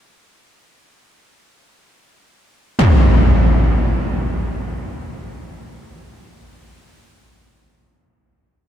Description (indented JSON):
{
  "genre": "trip hop",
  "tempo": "free time",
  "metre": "none",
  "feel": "none",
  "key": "none",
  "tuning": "none",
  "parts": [
    { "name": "impact", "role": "sound effects", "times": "2.8-6.2 s", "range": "none", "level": "-14 LUFS", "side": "equal", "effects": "none" }
  ],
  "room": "light reverb",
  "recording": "none",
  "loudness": "-14 LUFS",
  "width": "side -10 dB against mid",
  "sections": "0.0-2.8 A section; 2.8-6.2 B section",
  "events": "none",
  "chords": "none",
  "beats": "free time"
}